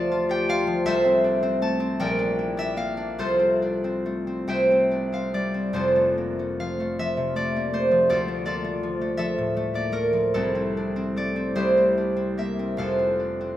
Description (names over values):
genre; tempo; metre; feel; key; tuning
classical, solo harp piece; 45-55 BPM (dotted quarters); 6/8; rubato; F major; A4 = 440 Hz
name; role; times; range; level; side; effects
concert harp; solo; 0.0-13.6 s; F1 to A5; -21 LUFS; equal; none
room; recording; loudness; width
moderate recital hall reverb, RT60 1.5 s; none; -21 LUFS; side -13 dB against mid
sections
0.0-13.6 A section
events
none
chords
0.0 Dm; 0.8 Am/C; 2.0 Gm/Bb; 3.2 F/C; 4.5 C; 5.7 F; 8.1 Dm; 10.3 Am/C; 11.6 C7; 12.8 F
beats
| 0.85 1.98 | 3.16 4.47 | 5.72 6.96 | 8.09 9.19 | 10.33 11.56 | 12.78